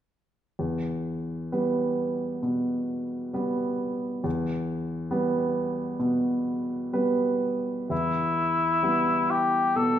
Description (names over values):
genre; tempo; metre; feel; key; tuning
classical, romantic duo for cor anglais and grand piano; 60-70 BPM; 4/4; rubato; E minor; A4 = 440 Hz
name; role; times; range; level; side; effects
clear baby grand piano; accompaniment; 0.6-10.0 s; E2 to B4; -26 LUFS; right 1 dB; none
dark cor anglais; melody; 7.9-10.0 s; E4 to A4; -23 LUFS; left 2 dB; none
room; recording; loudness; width
wet recital hall reverb, RT60 1.4 s; minimal, uncompressed stereo recording; -24 LUFS; side -10 dB against mid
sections
0.6-7.9 A section; 7.9-10.0 B section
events
none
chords
0.6 Em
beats
| 0.59 1.51 2.42 3.34 | 4.25 5.12 6.00 6.94 | 7.91 8.83 9.76